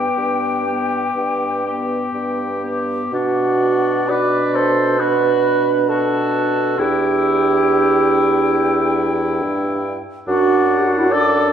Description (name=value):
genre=classical, slow romantic movement for wind quintet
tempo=59-71 BPM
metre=4/4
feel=rubato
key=unclear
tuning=A4 = 440 Hz
part: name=hollow concert flute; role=melody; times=0.0-11.5 s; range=F#5 to D6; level=-24 LUFS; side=left 5 dB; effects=none
part: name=warm oboe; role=second line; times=0.0-11.5 s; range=D4 to B4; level=-22 LUFS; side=left 2 dB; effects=none
part: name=mellow French horn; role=accompaniment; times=0.0-11.5 s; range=B3 to D4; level=-24 LUFS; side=left 1 dB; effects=none
part: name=mellow clarinet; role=accompaniment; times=0.0-11.5 s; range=E4 to D5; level=-19 LUFS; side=right 5 dB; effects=none
part: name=mellow bassoon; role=bass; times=0.0-11.5 s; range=E2 to B2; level=-22 LUFS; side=equal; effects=none
room=wet recital hall reverb, RT60 1.5 s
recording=recorded in a church or concert hall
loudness=-15 LUFS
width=side -8 dB against mid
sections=0.0-3.1 A section; 3.1-11.5 B section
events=none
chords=0.0 G; 3.1 Bm; 6.8 Em7; 10.3 D/F#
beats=0.17 1.16 2.14 | 3.13 4.09 5.00 5.89 | 6.79 7.67 8.56 9.43 | 10.29 11.13